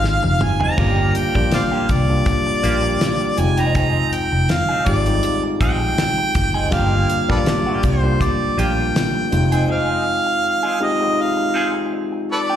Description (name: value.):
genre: lush 1970s-style soul.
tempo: 81 BPM.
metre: 4/4.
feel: swing 54% on 16ths.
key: F dorian.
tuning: A4 = 440 Hz.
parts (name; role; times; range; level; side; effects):
warm harmonica; melody; 0.0-12.6 s; A4 to Bb5; -21 LUFS; right 1 dB; slapback echo.
overdriven tine electric piano; accompaniment; 0.0-12.6 s; G3 to G5; -22 LUFS; left 2 dB; slapback echo.
clean electric guitar; riff; 0.0-12.6 s; Bb3 to Ab4; -27 LUFS; right 4 dB; wah, spring reverb, slapback echo.
vintage muted fingered electric bass; bass; 0.0-9.6 s; F1 to C2; -19 LUFS; equal; none.
damped 70s drum kit; drums; 0.0-9.7 s; crash cymbal, hi-hat, kick drum, snare drum, toms; -21 LUFS; equal; slapback echo.
room: light reverb.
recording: live gig heard through the venue's PA, recital hall reverb.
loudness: -16 LUFS.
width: side -10 dB against mid.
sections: 0.0-12.6 A section.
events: drum fill 0.0-0.8.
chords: 0.0 Fm7; 0.8 Gm7; 3.4 Fm7; 6.7 Gm7; 9.3 Fm7.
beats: 0.04 | 0.78 1.52 2.27 3.01 | 3.75 4.50 5.24 5.98 | 6.73 7.47 8.21 8.96 | 9.70 10.44 11.19 11.93.